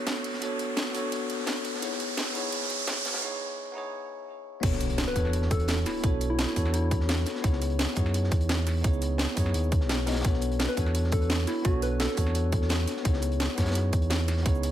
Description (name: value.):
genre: liquid drum and bass.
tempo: 171 BPM.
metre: 4/4.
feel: straight.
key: unclear.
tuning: A4 = 440 Hz.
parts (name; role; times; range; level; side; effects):
bell-like tine electric piano; accompaniment; 0.0-14.7 s; B3 to D#5; -32 LUFS; moving between left 7 dB and right 6 dB; auto-pan, digital delay.
riser and impact; sound effects; 0.0-6.0 s; none; -34 LUFS; right 2 dB; none.
crunchy breakbeat drum kit; drums; 0.1-14.7 s; hi-hat, snare drum; -38 LUFS; equal; high-pass filter on hats, high-pass filter on snare, high-pass filter on room.
drum and bass drum kit; drums; 0.1-14.7 s; crash cymbal, hi-hat, shaker, snare drum; -32 LUFS; right 1 dB; overdrive.
sub bass with octave; bass; 4.6-14.7 s; B1 to F#2; -28 LUFS; equal; none.
electronic kick drum; drums; 4.6-14.5 s; none; -26 LUFS; equal; overdrive.
soft struck synth lead; melody; 5.1-7.2, 10.7-12.1 s; E4 to B4; -34 LUFS; left 2 dB; chorus, digital delay.
room: light reverb, digital ambience.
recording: high-pass filter.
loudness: -25 LUFS.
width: side -12 dB against mid.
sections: 0.0-4.6 A section; 4.6-14.7 B section.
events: build-up 0.0-4.6; riser 0.0-3.2; filter sweep on tine electric piano 0.0-4.6; break 3.2-4.6; drop 4.6-14.7; impact 4.6-6.0.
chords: 0.0 Bm9; 1.8 C#m9; 4.6 Bm9; 7.4 C#m9; 10.2 Bm9; 13.1 C#m9.